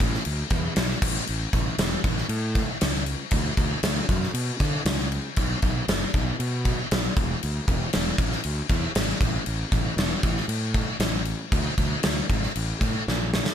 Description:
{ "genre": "hard rock", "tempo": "117 BPM", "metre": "4/4", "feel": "straight", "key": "unclear", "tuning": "A4 = 440 Hz", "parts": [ { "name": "fuzz fingered electric bass", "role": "bass", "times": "0.0-13.4 s", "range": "E1 to D3", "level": "-28 LUFS", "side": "equal", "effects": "overdrive" }, { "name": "gated 80s drum kit", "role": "drums", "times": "0.0-13.5 s", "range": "crash cymbal, kick drum, snare drum", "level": "-24 LUFS", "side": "equal", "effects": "none" } ], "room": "light reverb", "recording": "none", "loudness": "-23 LUFS", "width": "side -9 dB against mid", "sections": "0.0-13.5 A section", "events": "drum fill 13.1-13.5", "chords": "none" }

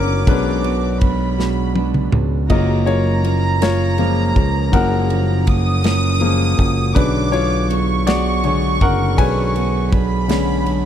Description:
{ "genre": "six-eight pop ballad", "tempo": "54 BPM (dotted quarters)", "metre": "6/8", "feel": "straight", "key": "unclear", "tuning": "A4 = 439 Hz", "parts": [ { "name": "warm studio violin section", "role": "second line", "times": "0.0-10.9 s", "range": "A#5 to D#6", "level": "-24 LUFS", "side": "right 2 dB", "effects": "none" }, { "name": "clear baby grand piano", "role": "accompaniment", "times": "0.0-10.9 s", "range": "B2 to G#5", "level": "-21 LUFS", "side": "left 6 dB", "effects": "none" }, { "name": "fingerpicked plugged-in steel-string acoustic guitar", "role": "arpeggios", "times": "0.0-10.9 s", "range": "F#2 to A#4", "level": "-24 LUFS", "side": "right 17 dB", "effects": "none" }, { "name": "fingered electric bass", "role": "bass", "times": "0.0-10.9 s", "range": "F#1 to C#2", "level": "-18 LUFS", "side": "equal", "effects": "none" }, { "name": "modern studio drum kit", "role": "drums", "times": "0.3-10.8 s", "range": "crash cymbal, kick drum, ride cymbal, snare drum, toms", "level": "-20 LUFS", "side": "equal", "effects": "none" } ], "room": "little or no reverb", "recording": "dry, close 1970s-style studio recording", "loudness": "-14 LUFS", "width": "side -10 dB against mid", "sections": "0.0-10.9 A section", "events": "grand piano solo 0.0-10.9; drum fill 1.4-2.5", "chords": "0.0 Bm6; 2.5 F#maj7; 7.0 Bm6" }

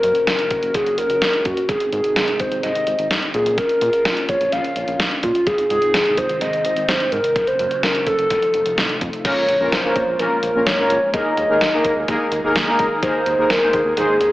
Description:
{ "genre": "synth-pop", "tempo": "127 BPM", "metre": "4/4", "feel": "straight", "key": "Ab mixolydian", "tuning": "A4 = 440 Hz", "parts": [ { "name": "hollow clarinet-like synth lead", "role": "melody", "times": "0.0-14.3 s", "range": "F4 to F5", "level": "-18 LUFS", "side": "equal", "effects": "chorus, analog delay" }, { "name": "string machine, cellos", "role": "sustained chords", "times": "0.0-14.3 s", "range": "Ab2 to Ab4", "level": "-29 LUFS", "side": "equal", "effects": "phaser, ensemble chorus" }, { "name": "round analog bass", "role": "bass", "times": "0.0-14.3 s", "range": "F1 to Bb2", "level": "-30 LUFS", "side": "equal", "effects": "none" }, { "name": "gated 80s digital drum machine", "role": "drums", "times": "0.0-14.3 s", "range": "crash cymbal, hi-hat, kick drum, snare drum", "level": "-23 LUFS", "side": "equal", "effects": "gated reverb, gated reverb snare, analog delay" }, { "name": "analog synth brass", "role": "accompaniment", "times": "9.2-14.2 s", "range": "Bb3 to C5", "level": "-20 LUFS", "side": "equal", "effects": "chorus, analog delay" } ], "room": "wet echo chamber reverb, RT60 1.4 s", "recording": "echo-heavy mix, AM radio sound", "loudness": "-16 LUFS", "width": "side -17 dB against mid", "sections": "0.0-9.2 A section; 9.2-14.3 B section", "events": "none", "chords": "0.0 Gb; 1.7 Ab; 3.3 Bbm; 5.5 Ab; 7.4 Gb; 8.3 F7; 9.2 Bbm7; 11.1 Ebsus4" }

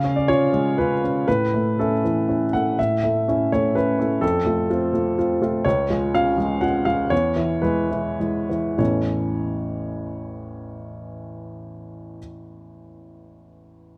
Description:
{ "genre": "neoclassical minimalist piano", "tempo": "100-127 BPM", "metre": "3/4", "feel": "rubato", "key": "A major", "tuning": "A4 = 440 Hz", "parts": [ { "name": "clear upright piano", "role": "solo", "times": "0.0-14.0 s", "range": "A1 to F#5", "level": "-22 LUFS", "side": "equal", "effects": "none" } ], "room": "light reverb", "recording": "close, detailed microphones", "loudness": "-22 LUFS", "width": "mono", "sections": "0.0-2.8 A section; 2.8-8.8 B section; 8.8-12.3 C section", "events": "slowing down 4.9-8.8", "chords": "0.0 C#; 1.3 A; 4.2 F; 5.6 C#; 7.1 E; 8.8 A" }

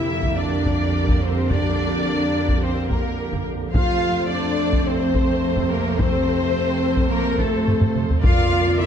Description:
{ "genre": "cinematic, epic orchestral film score", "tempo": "107 BPM", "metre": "4/4", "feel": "straight", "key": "F major", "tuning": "A4 = 441 Hz", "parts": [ { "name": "warm symphonic violin section", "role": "melody", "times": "0.0-8.9 s", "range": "A4 to F5", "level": "-31 LUFS", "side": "left 3 dB", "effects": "none" }, { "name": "warm symphonic violin section", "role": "second line", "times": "0.0-8.9 s", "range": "A4 to F5", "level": "-28 LUFS", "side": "left 3 dB", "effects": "none" }, { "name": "warm symphonic viola section", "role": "accompaniment", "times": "0.0-8.9 s", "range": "G4 to D5", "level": "-30 LUFS", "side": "left 1 dB", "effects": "none" }, { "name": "bright trombone section", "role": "sustained chords", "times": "0.0-8.9 s", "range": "C3 to Bb3", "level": "-30 LUFS", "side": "right 6 dB", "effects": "none" }, { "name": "dark French horn section", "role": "sustained chords", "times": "0.0-8.9 s", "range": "A3 to F4", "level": "-26 LUFS", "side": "left 3 dB", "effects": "none" }, { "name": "rich symphonic cello section", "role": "bass", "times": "0.0-8.9 s", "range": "A3 to F4", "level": "-28 LUFS", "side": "right 3 dB", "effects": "none" }, { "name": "warm symphonic double bass section", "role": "bass", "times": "0.0-8.9 s", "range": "F2", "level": "-25 LUFS", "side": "right 3 dB", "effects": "none" }, { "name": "timpani", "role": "percussion", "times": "0.0-0.1, 8.2-8.9 s", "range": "F2", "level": "-32 LUFS", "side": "equal", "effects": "none" }, { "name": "taiko ensemble", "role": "drums", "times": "0.2-8.8 s", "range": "none", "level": "-22 LUFS", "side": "equal", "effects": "none" } ], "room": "moderate concert hall reverb, RT60 2.4 s", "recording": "dark, warm production", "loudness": "-18 LUFS", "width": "side -8 dB against mid", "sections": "0.0-8.9 A section", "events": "drum fill 7.7-8.2", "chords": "0.0 Gm/F; 3.8 F; 8.2 Bb/F" }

